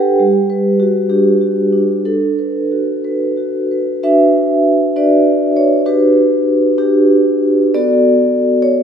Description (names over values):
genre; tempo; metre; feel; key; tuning
classical, contemporary piece for solo vibraphone; 60-69 BPM (dotted quarters); 6/8; rubato; D major; A4 = 444 Hz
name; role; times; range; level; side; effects
vibraphone with soft mallets; solo; 0.0-8.8 s; G3 to G5; -11 LUFS; equal; none
room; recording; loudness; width
moderate scoring stage reverb, RT60 1.4 s; none; -11 LUFS; side -8 dB against mid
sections
0.0-4.0 A section; 4.0-8.8 B section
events
none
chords
0.2 Gmaj7; 2.1 D6; 5.9 Gmaj7/D; 7.7 Bm7